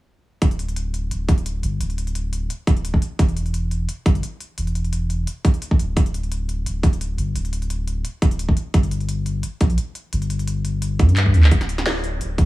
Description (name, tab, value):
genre	liquid drum and bass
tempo	173 BPM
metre	4/4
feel	swing 53% on 16ths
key	unclear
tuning	A4 = 440 Hz
part	saturated sub bass	bass	0.4-12.5 s	D1 to G2	-21 LUFS	equal	none
part	drum and bass drum kit	drums	0.4-12.5 s	handclaps, hi-hat, snare drum	-29 LUFS	equal	studio reverb
part	electronic kick drum	drums	0.4-12.5 s	none	-16 LUFS	equal	studio reverb
room	little or no reverb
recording	none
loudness	-19 LUFS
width	side -17 dB against mid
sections	0.4-12.5 A section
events	drum fill 11.2-11.5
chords	none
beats	| 0.42 0.77 1.11 1.46 | 1.81 2.15 2.50 2.85 | 3.19 3.54 3.89 4.23 | 4.58 4.93 5.28 5.62 | 5.97 6.32 6.66 7.01 | 7.36 7.70 8.05 8.40 | 8.74 9.09 9.44 9.78 | 10.13 10.48 10.82 11.17 | 11.52 11.86 12.21